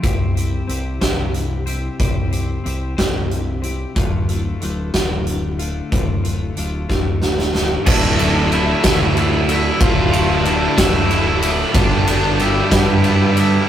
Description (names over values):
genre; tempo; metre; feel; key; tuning
quiet-loud alternative rock; 62 BPM (dotted quarters); 6/8; straight; D dorian; A4 = 440 Hz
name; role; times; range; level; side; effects
twelve-string electric guitar; arpeggios; 0.0-7.9 s; D2 to C5; -28 LUFS; left 4 dB; slapback echo
growling fingered electric bass; bass; 0.0-13.6 s; D1 to G2; -22 LUFS; equal; overdrive
huge arena drum kit; drums; 0.0-13.5 s; crash cymbal, hi-hat, kick drum, ride cymbal, snare drum; -18 LUFS; equal; none
overdriven electric guitar; riff; 7.8-13.7 s; D2 to G3; -24 LUFS; equal; spring reverb
octave-fuzz lead guitar; melody; 7.9-13.7 s; D4 to F5; -23 LUFS; equal; distortion
cranked stack guitar; riff; 7.9-13.7 s; D2 to G4; -24 LUFS; left 4 dB; overdrive
scooped high-gain guitar; riff; 7.9-13.7 s; D2 to G4; -21 LUFS; right 4 dB; distortion
room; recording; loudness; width
light reverb; rough rehearsal-room recording, tube saturation; -15 LUFS; side -10 dB against mid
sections
0.0-7.9 A section; 7.9-13.7 B section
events
drum fill 6.9-7.9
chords
0.0 C; 4.0 Dm; 7.9 Dmadd9; 11.8 G